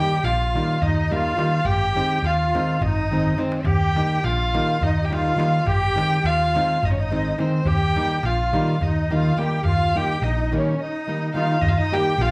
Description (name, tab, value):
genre	balkan folk, Balkan wedding band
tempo	210 BPM (eighths)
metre	7/8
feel	straight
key	Eb major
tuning	A4 = 442 Hz
part	dark violin	melody	0.0-12.3 s	C5 to G5	-27 LUFS	equal	none
part	musette accordion	second line	0.0-12.3 s	C4 to G4	-30 LUFS	equal	none
part	nylon-string guitar	accompaniment	0.0-12.1 s	Eb3 to G4	-27 LUFS	equal	none
part	hollow-body short-scale fingered electric bass	bass	0.2-12.3 s	Ab1 to Eb2	-27 LUFS	equal	none
part	darbuka	percussion	0.2-12.3 s	none	-30 LUFS	equal	none
room	wet large studio reverb, RT60 0.9 s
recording	band playing live in one room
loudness	-21 LUFS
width	mono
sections	0.0-11.6 A section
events	drum fill 3.1-3.7; break 10.8-11.6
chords	0.0 Eb; 1.7 Ab; 3.7 Eb; 5.7 Ab; 7.7 Eb